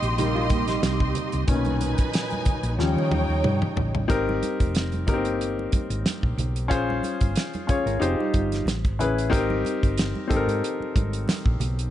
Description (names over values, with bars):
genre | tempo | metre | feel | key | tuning
lush 1970s-style soul | 92 BPM | 4/4 | swing 54% on 16ths | Ab major | A4 = 438 Hz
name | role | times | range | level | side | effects
warm studio string section | second line | 0.0-4.1 s | D#4 to C6 | -29 LUFS | right 1 dB | none
warm baby grand piano | accompaniment | 0.0-11.9 s | A#2 to Db5 | -27 LUFS | left 4 dB | none
bright tonewheel organ | sustained chords | 0.0-4.1 s | A#2 to Eb4 | -36 LUFS | right 2 dB | slow rotary speaker, overdrive
hollow-body short-scale fingered electric bass | bass | 0.0-11.9 s | F1 to Eb3 | -27 LUFS | equal | none
damped 70s drum kit | drums | 0.0-11.9 s | hi-hat, kick drum, snare drum, toms | -25 LUFS | equal | none
mellow electric guitar | riff | 0.2-1.4, 7.9-8.6 s | G3 to Bb4 | -31 LUFS | right 9 dB | none
congas | percussion | 0.2-11.8 s | none | -36 LUFS | right 5 dB | none
room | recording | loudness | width
little or no reverb | nothing above 10.9 kHz | -22 LUFS | side -12 dB against mid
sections
0.0-4.1 A section; 4.1-11.9 B section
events
grand piano solo 0.0-4.1; drum fill 2.8-4.1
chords
0.0 Cm7; 1.5 Bmaj7; 2.8 Eb7; 4.1 Abmaj7; 6.7 Bbm9; 8.0 F5; 8.7 Amaj7; 9.3 Abmaj7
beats
0.17 0.83 | 1.48 2.13 2.79 3.44 | 4.09 4.75 5.40 6.06 | 6.71 7.36 8.02 8.67 | 9.32 9.98 10.63 11.28